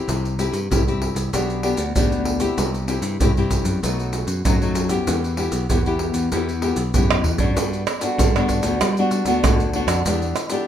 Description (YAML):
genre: samba and choro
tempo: 96 BPM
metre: 4/4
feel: straight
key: E minor, G major from 7.6 s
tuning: A4 = 440 Hz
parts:
  - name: nylon-string guitar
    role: accompaniment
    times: 0.0-10.7 s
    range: F#2 to G4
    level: -23 LUFS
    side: left 3 dB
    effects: none
  - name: modern bright picked electric bass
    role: bass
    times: 0.1-10.3 s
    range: B1 to G3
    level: -24 LUFS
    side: equal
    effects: none
  - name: maracas, surdo, pandeiro and tamborim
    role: percussion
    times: 0.1-10.7 s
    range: none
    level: -22 LUFS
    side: right 2 dB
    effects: none
room: light reverb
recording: minimal, uncompressed stereo recording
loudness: -18 LUFS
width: side -10 dB against mid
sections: 0.0-7.6 A section; 7.6-10.7 B section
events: drum fill 7.1-7.6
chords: 0.1 C; 1.3 G/B; 2.6 C; 3.8 B7; 5.1 Em; 7.6 Gmaj7; 10.1 Em7